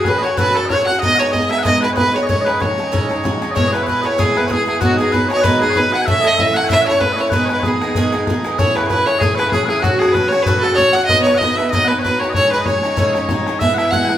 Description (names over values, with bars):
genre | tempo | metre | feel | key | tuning
celtic folk, Celtic reel | 191 BPM | 4/4 | swing 55% on 8ths | C# minor | A4 = 441 Hz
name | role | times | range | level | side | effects
clear fiddle | melody | 0.0-14.2 s | F#4 to F#5 | -17 LUFS | right 1 dB | none
loud bright bagpipes | second line | 0.0-14.2 s | F#4 to G#5 | -21 LUFS | left 3 dB | none
picked twelve-string acoustic guitar | accompaniment | 0.0-14.2 s | G#2 to B4 | -19 LUFS | right 2 dB | none
bodhran | percussion | 0.0-14.2 s | none | -21 LUFS | left 1 dB | none
room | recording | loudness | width
wet large studio reverb, RT60 0.9 s | band playing live in one room | -13 LUFS | side -11 dB against mid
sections
0.0-3.6 A section; 3.6-13.6 A section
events
none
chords
0.0 F#madd9; 1.0 G#m; 2.3 C#madd9; 3.6 C#m7; 4.8 G#m7; 6.1 A; 7.3 G#m; 8.6 Amaj7; 9.8 F#madd9; 11.1 B; 12.4 C#madd9; 13.6 E